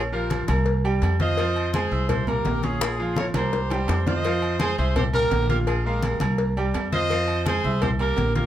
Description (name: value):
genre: latin, salsa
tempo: 168 BPM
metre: 4/4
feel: straight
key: F harmonic minor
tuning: A4 = 440 Hz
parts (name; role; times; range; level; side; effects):
- bright horn section; melody; 0.0-8.5 s; F4 to Eb5; -27 LUFS; equal; none
- bright grand piano; accompaniment; 0.0-8.5 s; F3 to F6; -28 LUFS; right 3 dB; none
- upright bass; bass; 0.0-8.5 s; Bb1 to F2; -25 LUFS; equal; none
- congas; percussion; 0.1-8.5 s; none; -29 LUFS; left 1 dB; none
- cowbell and bongos; percussion; 0.3-8.5 s; none; -31 LUFS; left 7 dB; none
- timbales and agogo bells; percussion; 0.3-8.3 s; none; -32 LUFS; right 4 dB; none
room: light reverb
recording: none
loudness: -21 LUFS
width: side -12 dB against mid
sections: 0.0-4.2 A section; 4.2-8.5 A section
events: drum fill 2.8-4.2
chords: 0.0 Bb5; 0.7 C5; 1.4 Fm7; 2.1 C7; 2.8 Bbm7; 3.5 C5; 4.2 Fm7; 5.0 C7; 5.7 Bb5; 6.4 C5; 7.1 Fm7; 7.8 C7